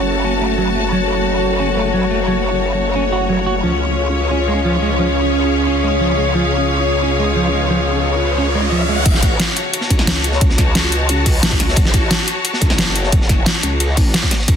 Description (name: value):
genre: dark technical drum and bass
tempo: 177 BPM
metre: 4/4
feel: straight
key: F# harmonic minor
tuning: A4 = 442 Hz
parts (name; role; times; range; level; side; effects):
- deep dark ambient pad; sustained chords; 0.0-9.0 s; C#4 to C#5; -22 LUFS; right 2 dB; chorus, built-in reverb, sidechain pumping
- mellow brass ensemble; stabs; 0.0-13.1 s; G#3 to C#5; -23 LUFS; left 6 dB; ping-pong delay
- growl bass; bass; 0.0-14.6 s; F#1 to C#2; -20 LUFS; equal; chorus, overdrive, sidechain pumping
- clear symphonic string section; texture; 0.0-14.6 s; C#4 to A5; -21 LUFS; left 2 dB; sidechain pumping
- semi-hollow electric guitar; arpeggios; 0.2-9.0 s; E#3 to F#4; -22 LUFS; right 3 dB; sidechain pumping, low-pass filter, ping-pong delay
- riser; sound effects; 7.5-9.1 s; none; -24 LUFS; equal; none
- crunchy breakbeat drum kit; drums; 9.1-14.6 s; hi-hat, ride cymbal, snare drum; -25 LUFS; equal; high-pass filter on cymbals, high-pass filter on hats, high-pass filter on snare, high-pass filter on room
- dubstep drum kit; drums; 9.1-14.5 s; crash cymbal, hi-hat, snare drum; -18 LUFS; equal; overdrive
- electronic kick drum; drums; 9.1-14.5 s; none; -15 LUFS; equal; overdrive
room: light reverb, studio reverb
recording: dense, heavily limited modern master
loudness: -14 LUFS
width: side -8 dB against mid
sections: 0.0-9.1 A section; 9.1-14.6 B section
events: filter sweep on ambient pad 0.0-9.1; riser 7.5-9.1; drop 9.1-14.6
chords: 0.0 F#m; 3.6 C#; 9.1 F#m